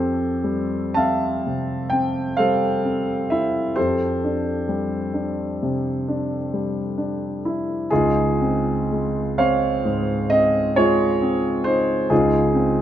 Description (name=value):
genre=classical, impressionist solo piano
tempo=36-46 BPM (dotted quarters)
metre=9/8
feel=rubato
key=F major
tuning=A4 = 441 Hz
part: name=warm concert grand piano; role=solo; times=0.0-12.8 s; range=Db2 to A5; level=-19 LUFS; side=equal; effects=none
room=moderate recital hall reverb, RT60 1.8 s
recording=close, detailed microphones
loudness=-19 LUFS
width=side -11 dB against mid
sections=0.0-12.8 A section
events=none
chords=0.0 Fmaj9; 3.8 Dm11/F; 7.9 Dbmaj9